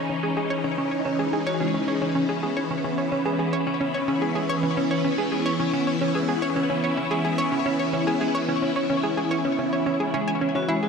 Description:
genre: ambient, sequencer-driven space music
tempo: 109 BPM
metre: 4/4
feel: straight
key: C# minor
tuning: A4 = 440 Hz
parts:
  - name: phased string machine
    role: sustained chords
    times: 0.0-10.9 s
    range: E3 to E4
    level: -26 LUFS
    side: equal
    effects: ensemble chorus, phaser
  - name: analog pluck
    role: riff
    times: 0.0-10.9 s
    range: C#4 to G#5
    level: -26 LUFS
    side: equal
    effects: chorus, ping-pong delay
  - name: vibraphone with hard mallets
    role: arpeggios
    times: 0.2-10.9 s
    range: G#3 to G#4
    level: -28 LUFS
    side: moving between left 2 dB and right 6 dB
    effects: auto-pan, ping-pong delay
room: wet huge ambient reverb, RT60 9.4 s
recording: none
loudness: -22 LUFS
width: side -5 dB against mid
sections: 0.0-10.9 A section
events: none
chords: 0.0 C#madd9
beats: 0.51 1.05 1.60 | 2.16 2.71 3.26 3.81 | 4.36 4.91 5.46 6.01 | 6.56 7.11 7.66 8.21 | 8.76 9.31 9.86 10.41

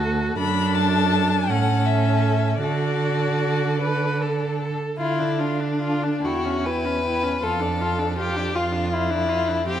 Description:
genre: classical, slow romantic movement for string quartet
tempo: 47-58 BPM (dotted quarters)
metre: 6/8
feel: rubato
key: D major, D minor from 5.0 s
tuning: A4 = 440 Hz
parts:
  - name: rich violin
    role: second line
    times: 0.0-9.8 s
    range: D4 to B4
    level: -26 LUFS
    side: left 3 dB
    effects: none
  - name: clear viola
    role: accompaniment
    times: 0.0-9.8 s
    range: C4 to B4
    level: -27 LUFS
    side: right 2 dB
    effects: none
  - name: rich cello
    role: bass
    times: 0.0-9.8 s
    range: D2 to D3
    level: -24 LUFS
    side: right 4 dB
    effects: none
  - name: rich violin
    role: melody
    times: 0.4-9.8 s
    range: D5 to B5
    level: -29 LUFS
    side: left 9 dB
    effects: none
room: wet recital hall reverb, RT60 1.6 s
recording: none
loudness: -20 LUFS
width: side -10 dB against mid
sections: 0.0-5.0 A section; 5.0-9.8 B section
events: none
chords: 0.4 D/F#; 1.5 A; 2.6 D; 5.0 Dm; 6.2 C#dim/E; 7.4 Dm/F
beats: | 0.39 1.49 | 2.63 3.82 | 4.99 6.24 | 7.42 8.55 | 9.67

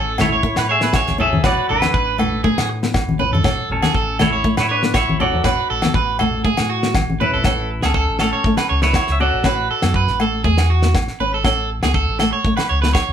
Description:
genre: highlife guitar band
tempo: 120 BPM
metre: 4/4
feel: swing 53% on 16ths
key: A major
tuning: A4 = 440 Hz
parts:
  - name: clean electric guitar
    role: melody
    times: 0.0-10.2 s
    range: C#4 to E5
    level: -22 LUFS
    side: equal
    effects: none
  - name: electric guitar at the edge of break-up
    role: arpeggios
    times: 0.0-13.1 s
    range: F#4 to C#5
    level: -21 LUFS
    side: right 5 dB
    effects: none
  - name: fingered electric bass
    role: bass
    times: 0.0-13.1 s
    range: G#1 to A2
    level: -22 LUFS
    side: equal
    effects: none
  - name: flamenco guitar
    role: accompaniment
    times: 0.2-13.0 s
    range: A3 to C#4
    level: -23 LUFS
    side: left 2 dB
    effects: none
  - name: damped 70s drum kit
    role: drums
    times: 0.2-13.1 s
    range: kick drum, snare drum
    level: -21 LUFS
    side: equal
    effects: none
  - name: agogo bells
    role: percussion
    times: 0.2-13.1 s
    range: none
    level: -26 LUFS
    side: left 1 dB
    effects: none
  - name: congas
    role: percussion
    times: 0.2-7.4 s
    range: none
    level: -23 LUFS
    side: left 2 dB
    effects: none
room: moderate studio ambience, RT60 0.5 s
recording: band playing live in one room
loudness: -15 LUFS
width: side -9 dB against mid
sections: 0.0-7.5 A section; 7.5-13.1 B section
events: drum fill 7.0-7.5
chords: 0.0 A; 1.4 Bm/A; 3.4 A; 9.5 Bm/A; 11.5 A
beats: 0.44 0.94 | 1.45 1.95 2.45 2.95 | 3.45 3.95 4.45 4.95 | 5.45 5.95 6.45 6.95 | 7.45 7.95 8.45 8.95 | 9.45 9.95 10.45 10.95 | 11.45 11.95 12.45 12.95

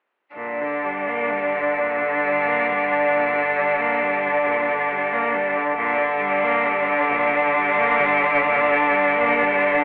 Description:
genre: classical, lyrical piece for cello ensemble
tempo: 39-46 BPM (dotted quarters)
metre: 12/8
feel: rubato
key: G minor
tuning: A4 = 439 Hz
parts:
  - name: rich cello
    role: melody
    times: 0.3-9.8 s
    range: D4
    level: -25 LUFS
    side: equal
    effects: none
  - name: clear cello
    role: accompaniment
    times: 0.3-9.8 s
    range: D3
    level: -24 LUFS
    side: equal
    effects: none
  - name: rich cello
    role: second line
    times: 0.4-9.8 s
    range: Bb2 to Bb3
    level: -27 LUFS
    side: equal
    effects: none
  - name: rich cello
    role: bass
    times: 0.4-9.8 s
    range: G2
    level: -36 LUFS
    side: equal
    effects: none
room: wet recital hall reverb, RT60 1.5 s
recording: telephone sound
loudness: -20 LUFS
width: mono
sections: 0.4-9.8 A section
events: none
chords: 0.4 Gm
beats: | 0.35 1.79 3.13 4.46 | 5.76 7.09 8.45

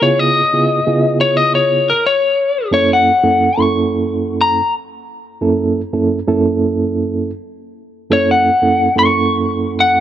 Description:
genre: blues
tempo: 89 BPM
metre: 4/4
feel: swing 54% on 16ths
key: F# mixolydian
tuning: A4 = 439 Hz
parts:
  - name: lightly driven lead guitar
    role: melody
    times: 0.0-10.0 s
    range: A#4 to C#6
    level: -13 LUFS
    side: left 2 dB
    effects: none
  - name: mellow reed electric piano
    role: accompaniment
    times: 0.0-10.0 s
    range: F#2 to A4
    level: -16 LUFS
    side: right 3 dB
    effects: fast tremolo
room: light reverb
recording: none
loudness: -12 LUFS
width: side -11 dB against mid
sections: 0.0-2.7 A section; 2.7-10.0 A section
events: none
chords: 0.0 C#7#9; 2.7 F#7#9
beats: | 0.01 0.69 1.36 2.04 | 2.71 3.39 4.06 4.74 | 5.41 6.09 6.76 7.43 | 8.11 8.78 9.45

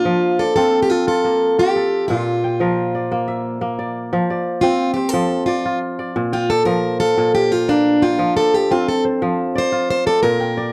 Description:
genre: west african traditional, West African string and xylophone music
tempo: 118 BPM (dotted quarters)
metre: 12/8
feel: straight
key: F major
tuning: A4 = 445 Hz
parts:
  - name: picked plugged-in steel-string acoustic guitar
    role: melody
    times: 0.0-10.7 s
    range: D4 to C5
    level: -19 LUFS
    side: equal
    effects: none
  - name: kora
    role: arpeggios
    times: 0.0-10.7 s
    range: Bb2 to G5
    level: -23 LUFS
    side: equal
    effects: none
room: little or no reverb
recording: dry, close 1970s-style studio recording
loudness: -18 LUFS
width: mono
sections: 0.0-4.1 A section; 4.1-10.7 B section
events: steel-string acoustic guitar solo 4.1-10.7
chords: 0.0 F; 2.1 Bb; 4.1 F5; 6.2 Bb; 8.2 F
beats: | 0.05 0.56 1.07 1.58 | 2.09 2.60 3.11 3.62 | 4.12 4.63 5.14 5.65 | 6.16 6.67 7.17 7.68 | 8.19 8.70 9.21 9.72 | 10.23

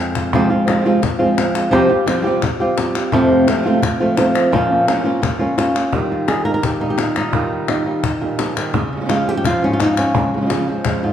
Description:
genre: flamenco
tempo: 171 BPM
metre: 4/4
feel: straight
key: F minor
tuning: A4 = 438 Hz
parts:
  - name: flamenco guitar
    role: melody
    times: 0.0-11.1 s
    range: F2 to Bb4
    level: -16 LUFS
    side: equal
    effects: none
  - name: flamenco guitar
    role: stabs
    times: 0.0-11.1 s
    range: F2 to F4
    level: -23 LUFS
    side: right 4 dB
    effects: none
  - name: cajon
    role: percussion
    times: 0.2-11.0 s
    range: none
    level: -24 LUFS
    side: left 4 dB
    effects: none
  - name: palmas hand claps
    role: percussion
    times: 0.2-11.0 s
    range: none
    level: -25 LUFS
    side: left 2 dB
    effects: none
room: wet recital hall reverb, RT60 1.6 s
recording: recorded in a church or concert hall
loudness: -14 LUFS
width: side -9 dB against mid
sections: 0.3-5.9 A section; 5.9-11.1 B section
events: drum fill 0.0-0.3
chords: 0.3 Fm; 1.7 Csus4; 3.1 F; 4.5 Bbm; 5.9 Ebadd9; 8.7 Db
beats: | 0.33 0.68 1.03 1.38 | 1.73 2.08 2.43 2.78 | 3.13 3.48 3.83 4.18 | 4.53 4.88 5.23 5.58 | 5.93 6.28 6.63 6.98 | 7.33 7.68 8.04 8.39 | 8.74 9.09 9.45 9.80 | 10.15 10.50 10.86

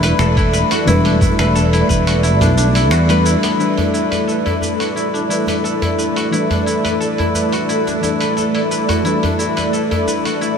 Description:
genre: organic downtempo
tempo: 88 BPM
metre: 4/4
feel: straight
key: E minor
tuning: A4 = 440 Hz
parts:
  - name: muted felt-like synth keys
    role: accompaniment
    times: 0.0-10.6 s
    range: E3 to B4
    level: -21 LUFS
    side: left 2 dB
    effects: chorus, sidechain pumping, tape echo
  - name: ethereal airy pad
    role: sustained chords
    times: 0.0-10.6 s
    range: A3 to D5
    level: -20 LUFS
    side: right 1 dB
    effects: ensemble chorus, built-in reverb, tremolo, sidechain pumping
  - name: guzheng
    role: arpeggios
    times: 0.0-10.6 s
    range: B3 to B4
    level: -20 LUFS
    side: left 2 dB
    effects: low-pass filter, tape echo
  - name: fretless electric bass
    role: bass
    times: 0.0-3.3 s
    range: E1 to E2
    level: -15 LUFS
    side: equal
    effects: sidechain pumping
  - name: dusty soul sampler-style drum kit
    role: drums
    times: 0.0-10.6 s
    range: finger snaps, hi-hat, shaker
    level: -25 LUFS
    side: right 2 dB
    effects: none
  - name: djembe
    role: percussion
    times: 0.0-10.2 s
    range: none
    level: -24 LUFS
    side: equal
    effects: none
  - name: electronic kick drum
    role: drums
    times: 0.4-2.0 s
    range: none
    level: -18 LUFS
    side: equal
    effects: none
room: wet huge ambient reverb, RT60 7.6 s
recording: dreamy mix soaked in reverb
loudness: -13 LUFS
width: side -6 dB against mid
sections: 0.0-3.6 A section; 3.6-10.6 B section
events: kick drops out 2.2-3.6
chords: 0.0 Em11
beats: 0.19 | 0.87 1.55 2.23 2.92 | 3.60 4.28 4.96 5.64 | 6.33 7.01 7.69 8.37 | 9.05 9.73 10.42

